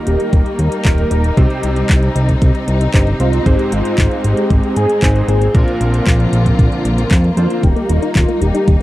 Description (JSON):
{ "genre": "italo disco", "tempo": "115 BPM", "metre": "4/4", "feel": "straight", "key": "Eb major", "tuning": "A4 = 440 Hz", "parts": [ { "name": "wide unison lead", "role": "melody", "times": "0.0-8.8 s", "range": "F4 to Bb4", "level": "-20 LUFS", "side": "equal", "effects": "ensemble chorus, tape echo" }, { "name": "warm symphonic string section", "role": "sustained chords", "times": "0.0-8.8 s", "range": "D3 to F4", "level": "-21 LUFS", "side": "left 1 dB", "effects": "none" }, { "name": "warm electric grand piano", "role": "stabs", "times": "0.0-7.6 s", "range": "Ab2 to C5", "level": "-22 LUFS", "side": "right 2 dB", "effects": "none" }, { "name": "fat analog bass", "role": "bass", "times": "0.1-8.8 s", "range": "Eb1 to Ab2", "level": "-15 LUFS", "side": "equal", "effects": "tube saturation" }, { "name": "house drum kit", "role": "drums", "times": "0.1-8.8 s", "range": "handclaps, hi-hat", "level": "-23 LUFS", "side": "equal", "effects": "overdrive" }, { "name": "electronic kick drum", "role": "drums", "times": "0.3-8.8 s", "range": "none", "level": "-14 LUFS", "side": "equal", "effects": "none" }, { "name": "soft round pluck", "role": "arpeggios", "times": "7.6-8.8 s", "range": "Eb3 to Eb4", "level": "-21 LUFS", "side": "left 3 dB", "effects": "chorus, tape echo" } ], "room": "little or no reverb", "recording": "dry, close 1970s-style studio recording", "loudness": "-12 LUFS", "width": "side -16 dB against mid", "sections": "0.0-8.8 A section", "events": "none", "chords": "0.0 Eb; 1.4 Cm; 3.5 Ab; 5.5 Bbadd9; 7.6 Eb" }